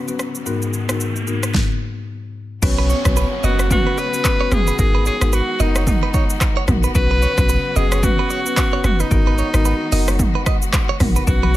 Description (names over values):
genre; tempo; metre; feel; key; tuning
afrobeats; 111 BPM; 4/4; swing 58% on 16ths; unclear; A4 = 442 Hz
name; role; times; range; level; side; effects
warm studio string section; sustained chords; 0.0-11.6 s; C#3 to F#4; -30 LUFS; left 1 dB; none
riser and downlifter; sound effects; 0.0-6.9 s; none; -31 LUFS; right 1 dB; none
marimba with medium mallets; accompaniment; 0.1-11.5 s; G#2 to B4; -25 LUFS; left 4 dB; none
deep house drum kit; drums; 0.1-11.6 s; crash cymbal, handclaps, hi-hat, kick drum, rim click, shaker, snare drum, toms; -19 LUFS; equal; overdrive
breathy tenor saxophone; melody; 2.6-11.6 s; C#4 to B4; -22 LUFS; equal; ping-pong delay
punchy sub bass; bass; 2.6-11.6 s; F#1 to B1; -18 LUFS; equal; none
direct-recorded clean electric guitar; riff; 2.8-11.6 s; B4 to D#5; -26 LUFS; right 10 dB; none
congas; percussion; 11.4-11.5 s; none; -22 LUFS; left 4 dB; none
room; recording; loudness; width
studio ambience; none; -15 LUFS; side -15 dB against mid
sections
0.0-2.6 A section; 2.6-11.6 B section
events
riser 0.0-2.6; stop 1.5-2.6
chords
0.5 G#m7; 2.6 Bsus2; 4.8 G#m7; 6.9 Bsus2; 9.1 G#m7